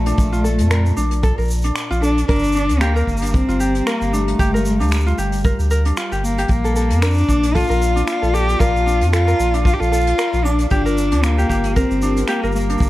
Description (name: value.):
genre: folktronica.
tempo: 114 BPM.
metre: 4/4.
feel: swing 56% on 16ths.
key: Bb major.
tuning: A4 = 440 Hz.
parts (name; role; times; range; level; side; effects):
warm cello; melody; 0.0-12.9 s; A3 to G4; -20 LUFS; left 1 dB; digital delay.
warbly tape-like pad; sustained chords; 0.0-12.9 s; Bb2 to Bb5; -28 LUFS; left 1 dB; chorus, built-in reverb.
ukulele; arpeggios; 0.0-12.9 s; D4 to Bb4; -24 LUFS; equal; digital delay.
warm sub bass; bass; 0.0-12.9 s; G1 to F2; -18 LUFS; equal; none.
jazz brush drum kit; drums; 0.1-12.9 s; finger snaps, hi-hat, shaker; -29 LUFS; equal; none.
kick drum; drums; 0.2-12.9 s; none; -18 LUFS; equal; none.
room: light reverb, studio reverb.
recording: dark, warm production, vinyl crackle.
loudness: -15 LUFS.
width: side -16 dB against mid.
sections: 0.0-12.9 A section.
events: none.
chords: 0.0 Bbmaj7; 2.3 Gm7; 6.5 Bbmaj7; 10.7 Gm7.